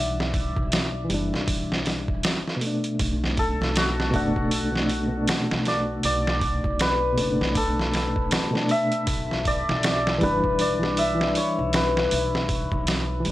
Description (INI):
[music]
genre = trip hop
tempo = 79 BPM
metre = 4/4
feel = swing 60% on 16ths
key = unclear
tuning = A4 = 442 Hz
[part]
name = santur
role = melody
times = 0.0-13.3 s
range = F#4 to F#5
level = -26 LUFS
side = left 1 dB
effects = tape echo
[part]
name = overdriven reed electric piano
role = accompaniment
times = 0.0-13.3 s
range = B2 to D4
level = -28 LUFS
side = equal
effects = fast tremolo
[part]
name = upright bass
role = bass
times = 0.0-13.3 s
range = F#1 to B1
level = -30 LUFS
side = equal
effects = none
[part]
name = trip hop sampler-style drum kit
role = drums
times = 0.2-13.3 s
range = hi-hat, kick drum, snare drum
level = -26 LUFS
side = equal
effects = none
[sound]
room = studio ambience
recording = dry, gritty hardware recording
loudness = -21 LUFS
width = side -15 dB against mid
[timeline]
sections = 0.0-13.3 A section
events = none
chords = 0.0 Em7; 3.0 Bm7; 9.1 Em7